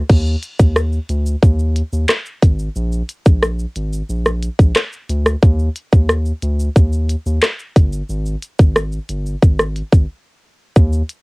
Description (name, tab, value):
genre	dancehall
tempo	90 BPM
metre	4/4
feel	straight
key	Eb major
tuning	A4 = 441 Hz
part	round analog bass	bass	0.0-11.0 s	G1 to Eb2	-18 LUFS	equal	none
part	minimal click drum kit	drums	0.1-11.2 s	crash cymbal, handclaps, hi-hat, kick drum, rim click, shaker	-12 LUFS	equal	cassette tape
room	little or no reverb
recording	home recording on cassette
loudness	-14 LUFS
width	side -28 dB against mid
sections	0.1-11.2 A section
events	break 10.1-10.8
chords	none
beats	| 0.09 0.76 1.43 2.09 | 2.76 3.43 4.09 4.76 | 5.43 6.09 6.76 7.43 | 8.09 8.76 9.43 10.09 | 10.76